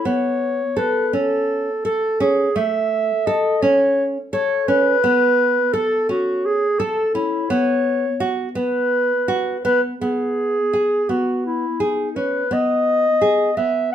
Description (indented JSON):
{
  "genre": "contemporary instrumental, contemporary",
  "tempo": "169 BPM (eighths)",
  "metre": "7/8",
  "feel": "straight",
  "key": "C# minor",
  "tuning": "A4 = 440 Hz",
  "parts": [
    { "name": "dark clarinet", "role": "melody", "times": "0.0-13.9 s", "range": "D#4 to E5", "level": "-19 LUFS", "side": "equal", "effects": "none" },
    { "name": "nylon-string guitar", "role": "arpeggios", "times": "0.1-13.9 s", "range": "A3 to A4", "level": "-21 LUFS", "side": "right 1 dB", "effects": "none" }
  ],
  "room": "moderate studio reverb, RT60 0.6 s",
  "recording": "minimal, uncompressed stereo recording",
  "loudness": "-17 LUFS",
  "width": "side -10 dB against mid",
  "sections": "0.0-10.0 A section; 10.0-13.9 B section",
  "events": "none",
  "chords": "0.0 Aadd9; 7.5 Bsus2; 10.0 C#sus2 (rootless)"
}